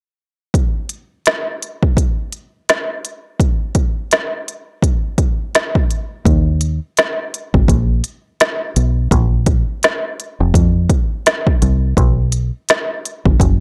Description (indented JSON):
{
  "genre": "hip hop, boom-bap hip-hop",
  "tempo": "84 BPM",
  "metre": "4/4",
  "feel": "swing 59% on 16ths",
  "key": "unclear",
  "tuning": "A4 = 438 Hz",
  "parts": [
    { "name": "organic electronic drum kit", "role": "drums", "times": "0.5-13.6 s", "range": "hi-hat, kick drum, rim click, snare drum", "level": "-17 LUFS", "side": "equal", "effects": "none" },
    { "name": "deep dub fingered electric bass", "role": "bass", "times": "6.3-13.6 s", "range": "F1 to F2", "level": "-17 LUFS", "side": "equal", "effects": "none" }
  ],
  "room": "little or no reverb",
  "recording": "dry, gritty hardware recording",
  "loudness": "-17 LUFS",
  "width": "mono",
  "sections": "0.5-6.3 A section; 6.3-13.6 B section",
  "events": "none",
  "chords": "none"
}